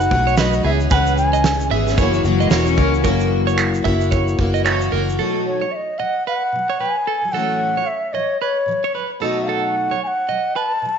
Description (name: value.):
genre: acoustic pop.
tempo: 112 BPM.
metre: 4/4.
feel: swing 60% on 16ths.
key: B mixolydian.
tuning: A4 = 439 Hz.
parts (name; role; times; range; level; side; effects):
breathy mellow bansuri; melody; 0.0-1.7, 5.5-11.0 s; C#5 to A5; -20 LUFS; left 1 dB; none.
picked plugged-in steel-string acoustic guitar; accompaniment; 0.0-11.0 s; F#2 to G#4; -22 LUFS; left 2 dB; double-tracked left and right.
vintage muted fingered electric bass; bass; 0.0-5.2 s; E1 to C#2; -20 LUFS; left 1 dB; none.
loose indie drum kit; drums; 0.0-5.2 s; finger snaps, kick drum, shaker, snare drum; -21 LUFS; right 2 dB; none.
clean electric guitar; arpeggios; 0.3-10.7 s; G#4 to E5; -24 LUFS; right 8 dB; tremolo.
clear cello; second line; 2.2-3.0 s; F#3 to C#4; -22 LUFS; left 10 dB; none.
room: moderate echo chamber reverb, RT60 1.3 s, studio reverb.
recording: 1960s-style stereo with parts hard left and right, nothing above 7.8 kHz.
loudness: -16 LUFS.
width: side -7 dB against mid.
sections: 0.0-3.1 A section; 3.1-5.2 B section; 5.2-11.0 C section.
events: none.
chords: 0.0 B7; 0.6 C#m7; 2.0 F#7; 5.2 B7; 7.3 A6; 9.2 B7.